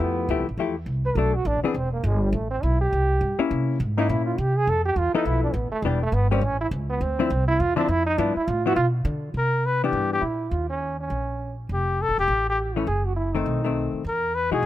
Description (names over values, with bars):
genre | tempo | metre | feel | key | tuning
jazz, small-group swing and bop | 205 BPM | 4/4 | swing 61% on 8ths | unclear | A4 = 440 Hz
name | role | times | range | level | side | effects
clear trombone | second line | 0.0-13.9 s | G3 to B4 | -26 LUFS | right 2 dB | none
hollow-body jazz guitar | accompaniment | 0.0-10.2, 12.8-14.6 s | D3 to A4 | -25 LUFS | left 6 dB | none
upright bass | bass | 0.0-14.7 s | E1 to D3 | -25 LUFS | equal | none
warm flugelhorn | melody | 9.4-14.7 s | G4 to B4 | -24 LUFS | left 3 dB | none
room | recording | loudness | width
little or no reverb | close, detailed microphones | -21 LUFS | side -13 dB against mid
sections
0.0-9.3 A section; 9.3-14.7 B section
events
trombone solo 0.0-9.3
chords
0.0 Fmaj9; 1.2 Bm7; 1.7 Edim; 2.3 Am9; 3.5 C7b9; 4.7 Fmaj7#11; 5.8 Em7; 6.4 A; 7.0 Dm9; 8.2 G13; 9.3 Cmaj9; 10.5 Eb5; 11.7 Fmaj9; 12.9 F#m; 13.5 B7b9; 14.0 Emaj9